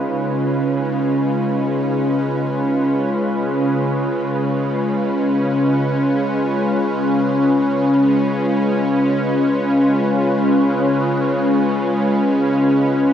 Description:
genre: ambient.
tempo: free time.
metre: none.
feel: none.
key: Db mixolydian.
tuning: A4 = 438 Hz.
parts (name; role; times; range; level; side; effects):
warm analog pad; sustained chords; 0.0-13.1 s; Db3 to Cb5; -16 LUFS; equal; chorus, shimmer reverb.
bowed-like drone; drone; 0.0-13.1 s; Db3 to Db4; -24 LUFS; equal; built-in reverb.
room: wet plate reverb, RT60 2.5 s.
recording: none.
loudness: -16 LUFS.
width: side -9 dB against mid.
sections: 0.0-13.1 A section.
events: fade-in on analog synth pad 0.0-13.1; fade-out on synth drone 0.0-13.1.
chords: 0.0 Db7.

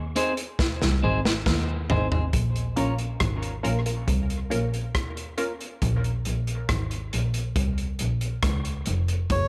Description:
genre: dub reggae.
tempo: 69 BPM.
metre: 4/4.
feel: straight.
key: Bb minor.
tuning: A4 = 440 Hz.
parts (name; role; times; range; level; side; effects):
rich double bass; bass; 0.0-9.5 s; F1 to Eb2; -28 LUFS; equal; none.
clean electric guitar; accompaniment; 0.2-2.9 s; C4 to Db5; -33 LUFS; equal; dub echo.
crunchy breakbeat drum kit; drums; 0.2-9.5 s; hi-hat, kick drum, rim click, snare drum, toms; -30 LUFS; equal; none.
filtered dub chord stab; stabs; 2.8-5.5 s; Bb3 to Bb4; -34 LUFS; equal; phaser, dub echo.
melodica; melody; 9.3-9.5 s; Db5; -27 LUFS; equal; none.
room: light reverb, studio reverb.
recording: none.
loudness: -26 LUFS.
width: mono.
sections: 0.0-2.3 A section; 2.3-9.5 B section.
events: break 0.0-2.3, 2.3-9.5; drum fill 0.6-2.3.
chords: 0.0 Ab; 2.3 Bbm.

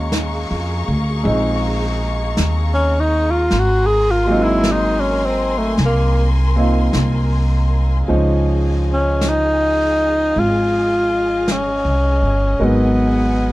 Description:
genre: jazz ballad.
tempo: 53 BPM.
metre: 4/4.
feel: swing 68% on 8ths.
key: Db major.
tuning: A4 = 440 Hz.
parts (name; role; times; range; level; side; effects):
clear grand piano; accompaniment; 0.0-13.5 s; F3 to C5; -22 LUFS; right 1 dB; none.
warm symphonic string section; sustained chords; 0.0-13.5 s; Ab4 to Db6; -28 LUFS; left 3 dB; none.
upright bass; bass; 0.0-13.5 s; G1 to F2; -18 LUFS; equal; none.
jazz brush drum kit; drums; 0.1-13.5 s; brushed snare drum, hi-hat, snare drum; -26 LUFS; equal; none.
breathy tenor saxophone; melody; 2.7-13.5 s; A3 to Ab4; -17 LUFS; equal; none.
room: studio ambience.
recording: none.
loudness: -14 LUFS.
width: side -17 dB against mid.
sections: 0.0-8.1 A section; 8.1-13.5 B section.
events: tenor saxophone solo 0.0-8.1.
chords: 0.0 Ebm11; 3.5 Ab9; 8.1 Dbmaj9; 12.6 Abm7.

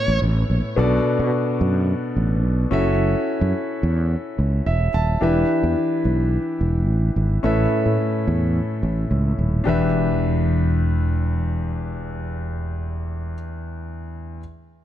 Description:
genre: 1980s-style pop.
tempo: 108 BPM.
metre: 4/4.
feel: straight.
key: E dorian.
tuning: A4 = 440 Hz.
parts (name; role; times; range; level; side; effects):
warm concert grand piano; accompaniment; 0.0-14.4 s; E2 to A5; -22 LUFS; left 1 dB; none.
fretless electric bass; bass; 0.1-13.3 s; D#1 to B2; -20 LUFS; right 1 dB; none.
room: light reverb, small room ambience.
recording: dark, warm production.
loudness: -18 LUFS.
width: side -11 dB against mid.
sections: 0.8-9.7 A section; 9.7-11.9 B section.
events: grand piano fill 4.4-5.2.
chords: 0.0 Aadd9; 0.8 Bm7; 2.7 F#m7; 5.2 Em7; 7.4 Aadd9; 9.7 Em7.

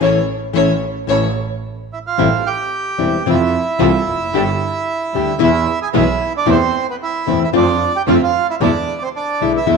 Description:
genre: tango.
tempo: 112 BPM.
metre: 4/4.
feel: rubato.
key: A minor.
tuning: A4 = 440 Hz.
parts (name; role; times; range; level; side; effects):
warm violin; second line; 0.0-1.3 s; C#5; -19 LUFS; left 6 dB; none.
nylon-string guitar; accompaniment; 0.0-9.8 s; B2 to G4; -18 LUFS; left 7 dB; none.
dark studio string section; stabs; 0.0-9.8 s; G#3 to A4; -24 LUFS; right 11 dB; none.
clear double bass; bass; 0.0-9.8 s; E1 to F2; -21 LUFS; right 5 dB; none.
bandoneon; melody; 1.9-9.8 s; B3 to G#5; -18 LUFS; right 5 dB; none.
room: wet echo chamber reverb, RT60 1.6 s.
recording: 1960s-style stereo with parts hard left and right.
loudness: -14 LUFS.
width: side -4 dB against mid.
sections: 0.0-2.2 A section; 2.2-9.8 B section.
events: violin solo 0.0-2.2; band accent 0.0-2.2.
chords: 0.0 A; 2.2 Am7; 3.3 Fmaj7; 4.3 Gsus2; 5.4 E; 6.5 Amadd9/E; 7.5 Dm7/F; 8.6 E7.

